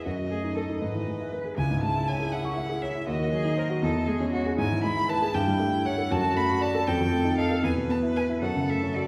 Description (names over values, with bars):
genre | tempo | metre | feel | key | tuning
quick classical-period movement for piano trio | 79 BPM (dotted quarters) | 6/8 | rubato | unclear | A4 = 440 Hz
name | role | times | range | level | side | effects
rich violin | melody | 0.0-9.1 s | D5 to B5 | -33 LUFS | equal | none
warm concert grand piano | accompaniment | 0.0-9.1 s | C#2 to C#6 | -28 LUFS | equal | none
rich cello | second line | 0.1-9.1 s | E4 to B4 | -36 LUFS | equal | none
room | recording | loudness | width
wet recital hall reverb, RT60 1.6 s | heard from further back in the room | -27 LUFS | mono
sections
0.0-9.1 A section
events
none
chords
0.1 D#dim/F#; 0.8 E/G#; 1.6 C#m; 3.1 Cdim/Eb; 3.8 C#m/E; 4.6 E/G#; 5.3 A7/G; 6.1 D/F#; 6.9 F7; 7.6 E5; 8.4 F#m